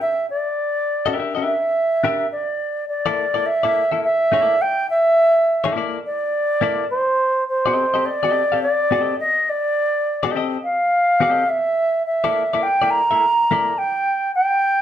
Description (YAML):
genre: funk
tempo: 105 BPM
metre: 4/4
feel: swing 60% on 16ths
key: unclear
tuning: A4 = 441 Hz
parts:
  - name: concert flute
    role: melody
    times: 0.0-14.8 s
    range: C5 to Bb5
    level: -17 LUFS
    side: right 1 dB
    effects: none
  - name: semi-hollow electric guitar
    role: accompaniment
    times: 1.1-13.7 s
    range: Bb3 to F5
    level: -23 LUFS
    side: left 6 dB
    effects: none
room: wet large studio reverb, RT60 0.9 s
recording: band playing live in one room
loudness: -17 LUFS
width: side -10 dB against mid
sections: 0.0-2.3 A section; 2.3-14.8 B section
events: none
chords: 0.0 Gm6/D; 2.3 Bbmaj7#11; 6.9 F9 (rootless); 11.5 Bbmaj7#11